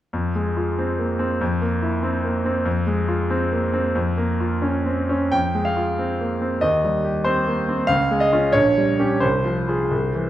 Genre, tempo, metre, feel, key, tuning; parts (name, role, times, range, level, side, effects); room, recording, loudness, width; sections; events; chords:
classical, romantic character piece for solo piano; 82-97 BPM; 2/4; rubato; F minor; A4 = 440 Hz
bright grand piano; solo; 0.1-10.3 s; Bb1 to G5; -19 LUFS; equal
moderate recital hall reverb, RT60 1.4 s; dark, warm production; -19 LUFS; side -12 dB against mid
0.1-5.3 A section; 5.3-10.3 B section
0.1 Fm; 1.4 C7/F; 2.7 Fm; 4.0 Bbm/F; 5.3 Fm; 6.6 Cm/Eb; 7.9 Db; 8.5 Gdim/Bb; 9.2 Fm/C